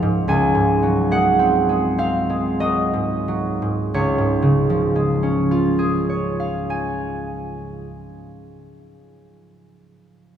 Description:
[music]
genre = classical, solo harp piece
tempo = 42-60 BPM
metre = 3/4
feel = rubato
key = Db major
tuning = A4 = 440 Hz
[part]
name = concert harp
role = solo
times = 0.0-9.0 s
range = Db2 to Ab5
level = -18 LUFS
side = right 1 dB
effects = none
[sound]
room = wet church reverb, RT60 3.6 s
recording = recorded in a church or concert hall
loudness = -17 LUFS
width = side -9 dB against mid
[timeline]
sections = 0.0-3.9 A section; 3.9-7.6 B section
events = slowing down 0.0-3.9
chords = 0.3 Ab7/Db; 3.9 Db

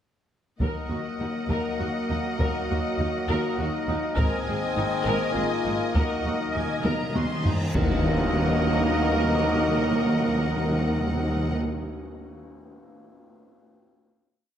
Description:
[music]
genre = cinematic, epic orchestral film score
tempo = 101 BPM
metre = 3/4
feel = straight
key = Eb minor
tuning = A4 = 440 Hz
[part]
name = rich studio violin section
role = melody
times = 0.6-11.6 s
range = Gb5 to C6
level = -36 LUFS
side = left 2 dB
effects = none
[part]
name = warm symphonic violin section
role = second line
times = 0.6-11.6 s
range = Eb5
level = -34 LUFS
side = left 2 dB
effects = none
[part]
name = rich symphonic viola section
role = accompaniment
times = 0.6-11.6 s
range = Eb4 to Bb4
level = -34 LUFS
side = right 1 dB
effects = none
[part]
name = bright trombone section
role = sustained chords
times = 0.6-11.5 s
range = Eb3 to Bb3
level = -33 LUFS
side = right 4 dB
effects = none
[part]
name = dark French horn section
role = sustained chords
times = 0.6-11.5 s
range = Bb3 to Gb4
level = -32 LUFS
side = left 5 dB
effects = none
[part]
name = warm woodwind section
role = sustained chords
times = 0.6-11.6 s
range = Eb4 to Eb5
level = -34 LUFS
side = left 1 dB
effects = none
[part]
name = dark symphonic cello section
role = bass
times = 0.6-11.6 s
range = Eb2 to Ab2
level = -31 LUFS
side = right 1 dB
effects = none
[part]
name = rich studio double bass section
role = bass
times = 0.6-11.6 s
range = Ab1 to Eb2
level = -32 LUFS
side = right 2 dB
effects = none
[part]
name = taiko ensemble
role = drums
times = 0.6-8.9 s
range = none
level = -27 LUFS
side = equal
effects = none
[part]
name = cymbal swell and tam-tam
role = percussion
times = 4.2-10.1 s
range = none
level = -34 LUFS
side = left 2 dB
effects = none
[part]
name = timpani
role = percussion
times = 6.0-11.6 s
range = Eb3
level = -30 LUFS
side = equal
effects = none
[part]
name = reverse cymbal and impact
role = sound effects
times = 7.5-9.5 s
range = none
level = -37 LUFS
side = equal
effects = none
[sound]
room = wet scoring stage reverb, RT60 2.2 s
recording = none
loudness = -23 LUFS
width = side -9 dB against mid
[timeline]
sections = 0.6-7.8 theme; 7.8-11.3 final chord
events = timpani fill 6.0-7.8; drum fill 6.9-7.8; reverse cymbal 7.5; band accent 7.8-8.3; impact 7.8-9.5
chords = 0.6 Ebm; 4.2 Abadd9; 6.0 Ebm

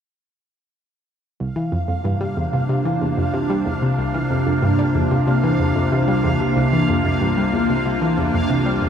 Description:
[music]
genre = ambient, sequencer-driven space music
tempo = 93 BPM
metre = 4/4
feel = straight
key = unclear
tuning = A4 = 441 Hz
[part]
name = evolving wavetable pad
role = sustained chords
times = 2.1-8.9 s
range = C3 to C5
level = -20 LUFS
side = equal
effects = ensemble chorus, built-in reverb
[part]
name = analog pluck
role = riff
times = 1.4-8.9 s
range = C2 to G3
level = -21 LUFS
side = equal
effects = chorus, cassette tape, ping-pong delay
[part]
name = warm sub bass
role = bass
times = 1.4-8.9 s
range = C2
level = -38 LUFS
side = equal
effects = none
[part]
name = bubbling stepped-filter texture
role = texture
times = 1.4-8.9 s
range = F5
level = -28 LUFS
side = right 2 dB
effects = chorus, built-in reverb
[sound]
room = wet concert hall reverb, RT60 2.2 s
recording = none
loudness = -17 LUFS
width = side -8 dB against mid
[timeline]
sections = 1.4-8.9 A section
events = fade-in on sub bass 1.4-8.9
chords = 1.4 C7sus4

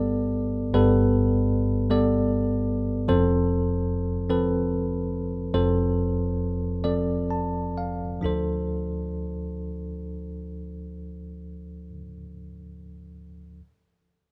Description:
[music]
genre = folk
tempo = 42-51 BPM (dotted quarters)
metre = 6/8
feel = straight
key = D dorian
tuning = A4 = 443 Hz
[part]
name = bell-like tine electric piano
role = accompaniment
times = 0.0-13.6 s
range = F1 to A5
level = -26 LUFS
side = equal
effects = none
[sound]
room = light reverb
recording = none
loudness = -25 LUFS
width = mono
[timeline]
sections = 0.0-8.2 A section; 8.2-11.1 B section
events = slowing down 3.1-8.2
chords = 0.0 Gadd9; 3.1 F; 8.2 Dm7

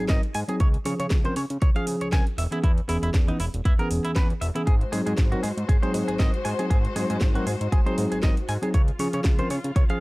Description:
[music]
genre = nu-disco, nu disco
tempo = 118 BPM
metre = 4/4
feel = swing 55% on 16ths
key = Ab mixolydian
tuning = A4 = 442 Hz
[part]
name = tine electric piano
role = accompaniment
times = 0.0-10.0 s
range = E3 to B4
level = -29 LUFS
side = equal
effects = sidechain pumping, low-pass filter, analog delay
[part]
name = direct-recorded clean electric guitar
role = riff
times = 0.0-10.0 s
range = Eb4 to Ab5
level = -32 LUFS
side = right 1 dB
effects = analog chorus, analog delay
[part]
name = fat analog bass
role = bass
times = 0.0-9.8 s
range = E1 to Db3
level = -29 LUFS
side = equal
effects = none
[part]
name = electronic kick drum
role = drums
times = 0.1-9.9 s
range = none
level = -21 LUFS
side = equal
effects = small room ambience
[part]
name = house drum kit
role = drums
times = 0.1-10.0 s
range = hi-hat, snare drum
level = -34 LUFS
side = equal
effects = small room ambience
[part]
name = warm studio string section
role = sustained chords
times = 4.7-10.0 s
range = Ab3 to C5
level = -33 LUFS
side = left 2 dB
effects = sidechain pumping
[sound]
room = little or no reverb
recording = dry, gritty hardware recording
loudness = -21 LUFS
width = side -22 dB against mid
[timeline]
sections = 0.0-10.0 A section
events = filter sweep on tine electric piano 0.0-10.0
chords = 0.0 Ab7; 0.6 Dbmaj7; 2.4 E6; 4.7 Ab7; 8.7 Dbmaj7

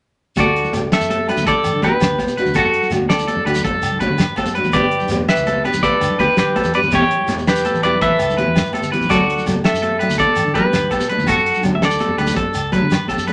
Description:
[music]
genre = highlife guitar band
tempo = 110 BPM (dotted quarters)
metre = 12/8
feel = straight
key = D major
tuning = A4 = 440 Hz
[part]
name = semi-hollow electric guitar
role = melody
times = 0.4-12.9 s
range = F#4 to E5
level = -21 LUFS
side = equal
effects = none
[part]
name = nylon-string guitar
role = accompaniment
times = 0.4-13.3 s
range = E3 to A4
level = -24 LUFS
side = equal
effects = none
[part]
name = electric guitar at the edge of break-up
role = arpeggios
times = 0.4-13.3 s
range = F#4 to B4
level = -23 LUFS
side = equal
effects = none
[part]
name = fingered electric bass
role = bass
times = 0.4-13.3 s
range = E1 to D3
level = -28 LUFS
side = equal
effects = none
[part]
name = cloth-damped thuddy drum kit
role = drums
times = 0.4-13.3 s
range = hi-hat, kick drum, snare drum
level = -24 LUFS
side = equal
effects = none
[part]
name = agogo bells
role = percussion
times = 0.4-13.3 s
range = none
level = -33 LUFS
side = equal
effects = none
[part]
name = congas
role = percussion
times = 0.4-13.2 s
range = none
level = -27 LUFS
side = equal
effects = none
[part]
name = shekere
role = percussion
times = 0.4-13.3 s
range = none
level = -33 LUFS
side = equal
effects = none
[sound]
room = moderate studio reverb, RT60 0.5 s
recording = nothing above 10.9 kHz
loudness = -17 LUFS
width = mono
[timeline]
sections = 0.4-13.3 A section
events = none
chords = 0.4 D; 4.7 G; 6.9 Em; 9.1 D

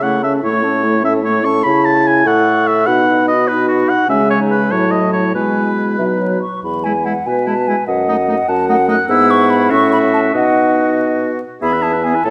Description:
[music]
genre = quick classical-period movement for wind quintet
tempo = 97 BPM (dotted quarters)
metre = 6/8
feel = rubato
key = E major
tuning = A4 = 440 Hz
[part]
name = mellow hollow silver concert flute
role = melody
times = 0.0-12.3 s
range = C#5 to F#6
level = -22 LUFS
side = equal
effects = none
[part]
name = clear oboe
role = second line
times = 0.0-12.3 s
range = D#4 to C#6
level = -20 LUFS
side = equal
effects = none
[part]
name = dark French horn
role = accompaniment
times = 0.0-12.3 s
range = F#3 to E4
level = -22 LUFS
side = equal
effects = none
[part]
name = warm clarinet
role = accompaniment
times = 0.0-12.3 s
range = C#4 to F#5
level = -24 LUFS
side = equal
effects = none
[part]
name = warm bassoon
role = bass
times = 0.0-12.3 s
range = E2 to C#3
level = -20 LUFS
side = equal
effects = none
[sound]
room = moderate scoring stage reverb, RT60 1.6 s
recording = dark, warm production, vinyl crackle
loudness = -14 LUFS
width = mono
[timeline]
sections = 0.0-6.6 A section; 6.6-12.3 B section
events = none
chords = 0.4 A; 2.9 B; 4.1 C#5; 4.7 F#m7/A; 5.3 E/B; 6.0 B; 6.6 E; 7.9 D#dim/F#; 9.1 E/G#; 9.7 F#m/A; 10.3 B; 11.6 E

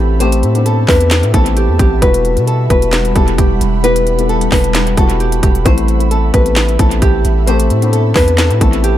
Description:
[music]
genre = hip hop, trap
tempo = 132 BPM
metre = 4/4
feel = half-time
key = unclear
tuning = A4 = 440 Hz
[part]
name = nylon-string guitar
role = melody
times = 0.0-9.0 s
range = G4 to C5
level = -17 LUFS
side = equal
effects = analog delay
[part]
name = felt-muted upright piano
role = accompaniment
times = 0.0-9.0 s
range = G3 to A4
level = -19 LUFS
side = left 6 dB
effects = analog delay
[part]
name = ethereal airy pad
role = sustained chords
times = 0.0-9.0 s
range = G3 to B5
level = -22 LUFS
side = equal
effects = ensemble chorus, built-in reverb
[part]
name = long sustained 808-style bass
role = bass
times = 0.0-9.0 s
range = E1 to B2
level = -14 LUFS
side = equal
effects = none
[part]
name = trap drum kit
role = drums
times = 0.2-9.0 s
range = handclaps, hi-hat, kick drum, snare drum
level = -14 LUFS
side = equal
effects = analog delay
[sound]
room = light reverb, digital ambience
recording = echo-heavy mix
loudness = -10 LUFS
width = side -12 dB against mid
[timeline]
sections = 0.0-9.0 A section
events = none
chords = 0.0 Amadd9; 2.0 Emadd9; 5.7 Amadd9

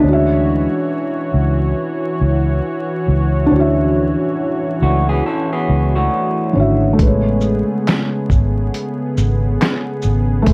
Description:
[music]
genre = lo-fi hip hop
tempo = 69 BPM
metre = 4/4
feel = swing 62% on 16ths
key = unclear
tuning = A4 = 440 Hz
[part]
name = electric guitar through a small old amp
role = second line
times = 0.0-7.0 s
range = G#3 to A4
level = -25 LUFS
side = equal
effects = low-pass filter, tape echo
[part]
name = felt-muted upright piano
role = accompaniment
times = 0.0-10.5 s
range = D3 to E5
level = -22 LUFS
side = equal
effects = cassette tape, low-pass filter
[part]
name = warm analog pad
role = sustained chords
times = 0.0-10.5 s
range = C#3 to C#5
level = -24 LUFS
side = equal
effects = subtle chorus, low-pass filter
[part]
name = vintage muted fingered electric bass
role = bass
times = 0.0-10.5 s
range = G#1 to D2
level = -19 LUFS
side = equal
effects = none
[part]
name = lo-fi sampler-style drum kit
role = drums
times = 7.0-10.5 s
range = handclaps, hi-hat, kick drum, shaker, snare drum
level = -18 LUFS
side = equal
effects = none
[sound]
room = light reverb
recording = vinyl crackle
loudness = -17 LUFS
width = mono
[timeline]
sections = 0.0-10.5 A section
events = none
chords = 0.0 Dmaj9; 7.0 Amaj9

